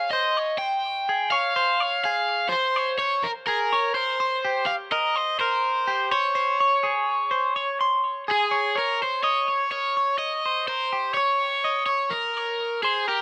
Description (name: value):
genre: rock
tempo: 125 BPM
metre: 5/4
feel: straight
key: unclear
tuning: A4 = 440 Hz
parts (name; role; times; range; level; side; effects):
- overdriven electric guitar; melody; 0.0-13.2 s; G4 to G5; -26 LUFS; equal; none
- clean electric guitar; arpeggios; 0.0-13.2 s; G4 to C6; -28 LUFS; equal; phaser, digital delay
room: moderate small room reverb, RT60 0.6 s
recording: none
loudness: -24 LUFS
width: mono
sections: 0.0-8.8 A section; 8.8-13.2 B section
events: none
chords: 0.0 Dbmaj7; 4.0 C7(no3); 6.4 Db5; 8.8 Eb7(no3) (rootless)